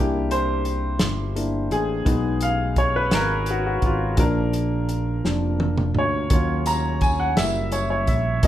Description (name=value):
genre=slow gospel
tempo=57 BPM (dotted quarters)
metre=6/8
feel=straight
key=unclear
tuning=A4 = 440 Hz
part: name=warm upright piano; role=accompaniment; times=0.0-8.5 s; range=F3 to Bb5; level=-23 LUFS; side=left 1 dB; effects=none
part: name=fingered electric bass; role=bass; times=0.0-8.5 s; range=F1 to Eb2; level=-25 LUFS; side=equal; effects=none
part: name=warm soul drum kit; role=drums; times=0.3-8.5 s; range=hi-hat, kick drum, snare drum, toms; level=-23 LUFS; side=right 1 dB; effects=none
part: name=tambourine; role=percussion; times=6.7-8.1 s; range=none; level=-37 LUFS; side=right 8 dB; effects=none
room=moderate large studio reverb, RT60 0.9 s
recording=band playing live in one room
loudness=-20 LUFS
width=side -12 dB against mid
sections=0.0-8.5 A section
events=upright piano solo 0.0-8.5; drum fill 5.3-6.3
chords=0.0 C7; 2.1 Abm13; 4.2 Bb; 6.3 Ebm7; 7.4 Gb7b9